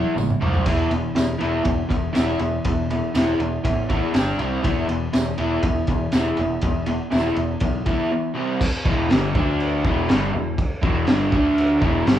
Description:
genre	garage rock duo or trio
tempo	121 BPM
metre	4/4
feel	straight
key	E minor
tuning	A4 = 438 Hz
part	crunchy overdriven guitar	riff	0.0-12.2 s	E2 to G4	-22 LUFS	equal	none
part	growling picked electric bass	bass	0.0-12.2 s	E1 to D2	-27 LUFS	equal	overdrive, tube saturation
part	crunchy breakbeat drum kit	drums	0.2-12.2 s	crash cymbal, kick drum, ride cymbal, snare drum, splash cymbal, toms	-23 LUFS	equal	none
part	tambourine	percussion	0.2-7.2 s	none	-42 LUFS	right 5 dB	none
room	moderate large studio reverb, RT60 0.9 s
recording	band playing live in one room, cassette tape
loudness	-19 LUFS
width	side -11 dB against mid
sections	0.0-8.6 A section; 8.6-12.2 B section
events	drum fill 0.0-0.7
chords	0.4 C5; 0.7 E5; 4.2 G5; 4.4 C5; 4.6 E5; 8.4 C5; 8.6 Em; 9.3 D5; 9.8 Em; 11.3 D5

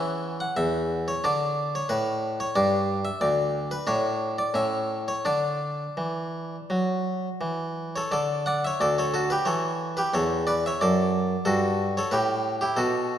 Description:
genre	classical, baroque-style suite movement for harpsichord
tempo	82-93 BPM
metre	4/4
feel	rubato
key	D major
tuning	A4 = 439 Hz
part	harpsichord	solo	0.0-13.2 s	D2 to F#5	-24 LUFS	equal	none
room	moderate concert hall reverb, RT60 2.1 s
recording	minimal, uncompressed stereo recording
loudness	-23 LUFS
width	side -10 dB against mid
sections	0.0-8.1 A section; 8.1-13.2 A section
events	none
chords	0.0 C#madd11/E; 1.2 D5; 2.5 G5; 3.9 D5/A; 4.5 A; 5.2 D; 9.5 A/E; 10.8 D/F#

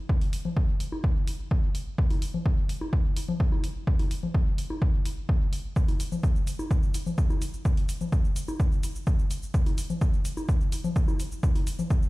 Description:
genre	techno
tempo	127 BPM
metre	4/4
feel	straight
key	none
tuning	none
part	electronic kick drum	drums	0.1-12.0 s	none	-25 LUFS	equal	overdrive
part	electronic hi-hat and shaker	drums	0.2-12.1 s	none	-42 LUFS	equal	overdrive
part	congas and bongos	percussion	0.5-11.9 s	none	-35 LUFS	left 3 dB	sidechain pumping on perc, dub echo
room	digital ambience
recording	played on a big sound system in a bare room, large studio reverb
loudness	-24 LUFS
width	side -20 dB against mid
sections	0.0-12.1 A section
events	none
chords	none

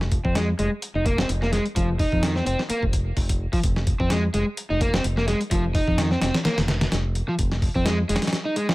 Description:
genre	breakbeat, breaks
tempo	128 BPM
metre	4/4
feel	swing 55% on 16ths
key	F minor pentatonic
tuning	A4 = 438 Hz
part	fingered electric bass	bass	0.0-8.2 s	F1 to F2	-25 LUFS	equal	none
part	dusty soul sampler-style drum kit	drums	0.0-8.7 s	hi-hat, kick drum, snare drum	-24 LUFS	equal	none
part	overdriven semi-hollow guitar	riff	0.2-8.7 s	Eb3 to Eb4	-25 LUFS	equal	vintage 12-bit sampler grit, low-pass filter, tape echo
room	little or no reverb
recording	none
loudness	-20 LUFS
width	side -20 dB against mid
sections	0.0-8.7 A section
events	none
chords	none

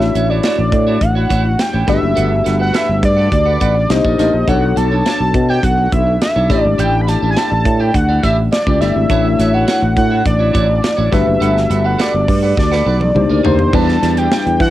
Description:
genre	polished 1980s jazz-funk pop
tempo	104 BPM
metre	4/4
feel	straight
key	D major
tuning	A4 = 444 Hz
part	fat analog lead	melody	0.0-14.7 s	C5 to B5	-17 LUFS	equal	cassette tape
part	tine electric piano	accompaniment	0.0-14.7 s	G3 to D5	-19 LUFS	left 6 dB	wide subtle chorus, cassette tape, plate reverb
part	sustaining fretless electric bass	bass	0.0-14.7 s	F#1 to E3	-15 LUFS	right 1 dB	wide subtle chorus
part	tight funk drum kit	drums	0.0-14.7 s	crash cymbal, hi-hat, kick drum, snare drum, toms	-19 LUFS	equal	cassette tape
part	clean electric guitar	riff	0.1-14.6 s	D4 to F#5	-24 LUFS	right 7 dB	wide subtle chorus, cassette tape
room	moderate studio reverb, RT60 0.5 s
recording	home recording on cassette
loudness	-11 LUFS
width	side -14 dB against mid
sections	0.0-13.7 A section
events	drum fill 12.6-13.7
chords	0.0 Dmaj9/A; 1.9 Gmaj9; 3.9 Cm9; 4.5 Bm9; 6.5 A7sus4; 9.1 Dmaj9/A; 11.1 Gmaj9; 13.2 Cm9; 13.7 Em7

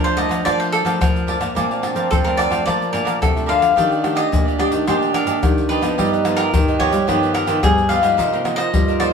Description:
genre	samba and choro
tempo	109 BPM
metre	4/4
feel	straight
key	Bb major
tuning	A4 = 440 Hz
part	cavaquinho	melody	0.0-9.1 s	Ab4 to F5	-20 LUFS	left 2 dB	none
part	mellow trombone	second line	0.0-9.1 s	A3 to G4	-25 LUFS	right 5 dB	none
part	cavaquinho	accompaniment	0.0-9.1 s	D4 to A5	-23 LUFS	right 4 dB	none
part	nylon-string guitar	accompaniment	0.0-9.1 s	F2 to G4	-27 LUFS	left 4 dB	none
part	nylon-string guitar	bass	0.0-9.1 s	Bb2 to G3	-24 LUFS	equal	none
part	egg shaker, pandeiro, tamborim and surdo	percussion	0.1-9.1 s	none	-21 LUFS	left 2 dB	none
room	wet stone room reverb, RT60 1.0 s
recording	band playing live in one room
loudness	-15 LUFS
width	side -6 dB against mid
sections	0.0-3.8 A section; 3.8-9.1 B section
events	none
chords	0.0 Bbmaj7; 3.8 Ebmaj9#11; 6.0 G7alt; 8.2 Cm7

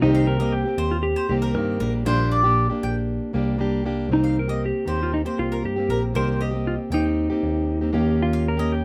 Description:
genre	acoustic pop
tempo	117 BPM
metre	4/4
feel	straight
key	C minor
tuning	A4 = 440 Hz
part	clean lap steel guitar	melody	0.0-8.8 s	Eb4 to Bb4	-26 LUFS	equal	none
part	fingerpicked plugged-in steel-string acoustic guitar	accompaniment	0.0-8.8 s	Bb2 to G4	-28 LUFS	equal	none
part	bell-like tine electric piano	bass	0.0-8.8 s	Bb1 to G2	-27 LUFS	equal	none
part	bowl-back mandolin	arpeggios	0.1-8.7 s	Bb4 to G5	-29 LUFS	equal	none
room	light reverb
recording	none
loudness	-23 LUFS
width	mono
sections	0.0-4.1 A section; 4.1-8.8 B section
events	none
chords	0.0 Cm7; 1.8 Gm/Bb; 4.1 Cm7; 7.9 Eb7

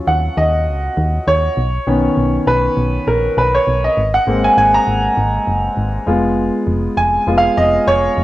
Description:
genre	1980s-style pop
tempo	100 BPM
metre	4/4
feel	swing 55% on 16ths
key	unclear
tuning	A4 = 440 Hz
part	clear concert grand piano	accompaniment	0.0-8.2 s	D#3 to Bb5	-14 LUFS	equal	none
part	solid FM bass	bass	0.1-8.2 s	F1 to Eb2	-19 LUFS	equal	none
room	moderate studio reverb, RT60 0.6 s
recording	home recording on cassette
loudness	-13 LUFS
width	side -15 dB against mid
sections	0.0-8.2 A section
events	grand piano solo 0.0-8.2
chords	0.0 Ebm7; 1.6 Badd9; 4.0 Abadd9; 6.1 Fdim

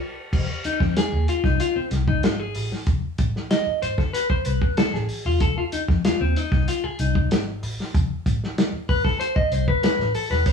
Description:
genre	funk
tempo	95 BPM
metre	4/4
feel	straight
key	unclear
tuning	A4 = 439 Hz
part	vintage muted fingered electric bass	bass	0.3-10.5 s	E1 to F2	-25 LUFS	left 1 dB	none
part	warm soul drum kit	drums	0.3-10.5 s	crash cymbal, hi-hat, kick drum, snare drum	-23 LUFS	equal	none
part	clean electric guitar	accompaniment	0.7-10.5 s	C4 to Eb5	-24 LUFS	left 3 dB	none
room	moderate studio reverb, RT60 0.6 s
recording	band playing live in one room, studio ambience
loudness	-20 LUFS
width	side -6 dB against mid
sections	0.3-10.5 A section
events	band accent 0.0-0.3; clean electric guitar solo 0.3-10.5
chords	0.3 F7#9

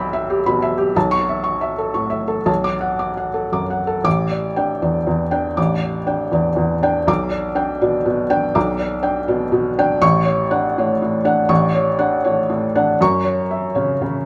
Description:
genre	neoclassical minimalist piano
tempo	120 BPM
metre	3/4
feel	rubato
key	unclear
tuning	A4 = 440 Hz
part	felt-muted upright piano	solo	0.0-14.3 s	A1 to D6	-19 LUFS	equal	none
room	moderate stone room reverb, RT60 1.4 s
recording	band playing live in one room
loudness	-19 LUFS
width	mono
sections	0.0-4.1 A section; 4.1-14.3 B section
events	none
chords	0.0 Em/B; 0.9 A/B; 2.5 D/B; 4.1 A7sus4; 7.1 G/B; 10.0 Dmaj7/A; 13.0 F#5

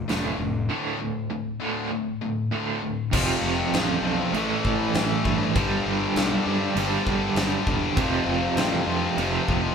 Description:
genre	hard rock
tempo	99 BPM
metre	4/4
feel	straight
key	D minor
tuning	A4 = 440 Hz
part	overdriven semi-hollow guitar	riff	0.0-9.7 s	D2 to A3	-27 LUFS	right 7 dB	tremolo
part	tight distorted guitar	riff	0.0-9.7 s	D2 to A3	-28 LUFS	left 7 dB	distortion
part	fuzz fingered electric bass	bass	0.0-9.7 s	E1 to G2	-31 LUFS	equal	overdrive
part	huge arena drum kit	drums	0.1-9.6 s	crash cymbal, hi-hat, kick drum, snare drum	-28 LUFS	left 1 dB	none
part	chorused pulse-width pad	sustained chords	3.1-9.7 s	F3 to B4	-37 LUFS	left 1 dB	none
part	heavy high-gain guitar	riff	3.1-9.7 s	F2 to A3	-28 LUFS	left 1 dB	distortion
room	moderate large studio reverb, RT60 1.0 s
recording	band playing live in one room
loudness	-22 LUFS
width	side -6 dB against mid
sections	0.0-3.1 A section; 3.1-9.7 B section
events	break 0.7-3.1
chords	0.0 Dm/F; 3.1 F; 4.3 A5; 5.5 G5; 8.0 F5

